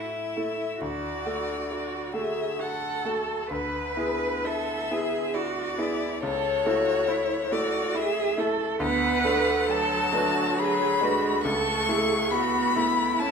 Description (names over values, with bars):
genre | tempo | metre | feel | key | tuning
classical, slow romantic movement for piano quartet | 68 BPM | 3/4 | rubato | A major | A4 = 439 Hz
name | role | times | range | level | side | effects
rich violin | melody | 0.0-13.3 s | A4 to C#6 | -28 LUFS | left 7 dB | none
rich cello | second line | 0.0-13.3 s | E4 to B4 | -29 LUFS | right 6 dB | none
bright concert grand piano | accompaniment | 0.0-13.3 s | C#2 to B4 | -30 LUFS | equal | none
rich viola | accompaniment | 0.0-13.3 s | F#3 to F#4 | -30 LUFS | right 5 dB | none
room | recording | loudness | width
wet recital hall reverb, RT60 1.5 s | minimal, uncompressed stereo recording | -24 LUFS | side -6 dB against mid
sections
0.0-13.3 A section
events
none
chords
0.0 A5; 0.8 D; 3.5 E7/D; 6.2 A/C#; 8.8 D6; 11.4 A/C#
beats
| 0.81 1.71 2.61 | 3.51 4.45 5.34 | 6.22 7.09 7.95 | 8.81 9.69 10.58 | 11.45 12.32 13.20